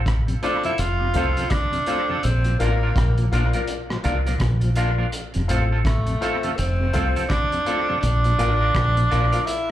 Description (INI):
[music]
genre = roots reggae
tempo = 83 BPM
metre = 4/4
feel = swing 60% on 16ths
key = F major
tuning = A4 = 442 Hz
[part]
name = deep dub fingered electric bass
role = bass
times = 0.0-9.3 s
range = F1 to C2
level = -21 LUFS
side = equal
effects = none
[part]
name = crunchy breakbeat drum kit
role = drums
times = 0.1-9.7 s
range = hi-hat, kick drum, rim click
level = -27 LUFS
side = equal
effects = tape echo
[part]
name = tonewheel organ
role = accompaniment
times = 0.3-9.4 s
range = F2 to F4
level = -31 LUFS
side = left 1 dB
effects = overdrive, chorus vibrato, slow rotary speaker, plate reverb, slapback echo
[part]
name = warm tenor saxophone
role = melody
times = 0.4-9.7 s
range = A3 to F4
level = -24 LUFS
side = right 1 dB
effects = dub echo
[part]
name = clean electric guitar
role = accompaniment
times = 0.4-9.4 s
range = C4 to Bb4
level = -30 LUFS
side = right 6 dB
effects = dub echo, plate reverb, slapback echo
[part]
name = clear grand piano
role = stabs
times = 0.4-9.5 s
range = F4 to F5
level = -30 LUFS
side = left 8 dB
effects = plate reverb, slapback echo
[sound]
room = light reverb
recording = live gig heard through the venue's PA, club reverb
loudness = -19 LUFS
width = side -13 dB against mid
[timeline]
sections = 0.0-9.7 A section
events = none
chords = 0.0 F; 2.2 Bb; 5.1 F; 8.0 Bb